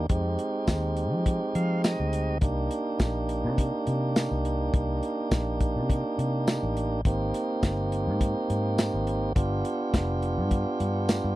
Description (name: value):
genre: straight-eighth soul blues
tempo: 104 BPM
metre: 4/4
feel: straight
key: C minor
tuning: A4 = 440 Hz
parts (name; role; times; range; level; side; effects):
- tonewheel organ; accompaniment; 0.0-11.4 s; Ab3 to F5; -28 LUFS; right 2 dB; overdrive, stopped rotary speaker
- vintage muted fingered electric bass; bass; 0.0-11.4 s; F1 to F3; -29 LUFS; left 1 dB; none
- warm soul drum kit; drums; 0.1-11.2 s; hi-hat, kick drum, snare drum, tambourine; -25 LUFS; equal; none
room: little or no reverb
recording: dry, close 1970s-style studio recording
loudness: -25 LUFS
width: side -16 dB against mid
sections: 0.0-11.4 A section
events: tonewheel organ fill 1.3-2.4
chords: 0.1 Fm7; 2.4 Cm7; 7.1 Abmaj7; 9.4 G7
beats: | 0.10 0.68 1.26 1.84 | 2.42 3.00 3.58 4.16 | 4.74 5.32 5.89 6.47 | 7.05 7.63 8.21 8.79 | 9.36 9.94 10.52 11.10